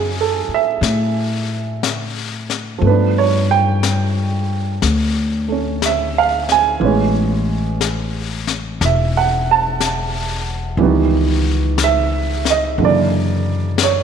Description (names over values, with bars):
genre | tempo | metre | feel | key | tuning
jazz ballad | 60 BPM | 4/4 | swing 67% on 8ths | F# minor | A4 = 442 Hz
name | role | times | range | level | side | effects
warm baby grand piano | accompaniment | 0.0-14.0 s | C#3 to A5 | -17 LUFS | right 8 dB | none
upright bass | bass | 0.0-14.0 s | E1 to A2 | -19 LUFS | left 2 dB | none
jazz brush drum kit | drums | 0.8-14.0 s | brushed snare drum, hi-hat, snare drum | -24 LUFS | left 9 dB | none
room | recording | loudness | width
moderate echo chamber reverb, RT60 2.4 s | 1960s-style stereo with parts hard left and right | -15 LUFS | side -7 dB against mid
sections
0.0-14.0 A section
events
none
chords
0.0 F#m7; 2.8 G9; 6.8 Amaj9; 10.8 C#m7b5; 12.8 F#7b13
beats
0.82 1.83 | 2.83 3.83 4.82 5.82 | 6.82 7.81 8.81 9.80 | 10.80 11.79 12.79 13.80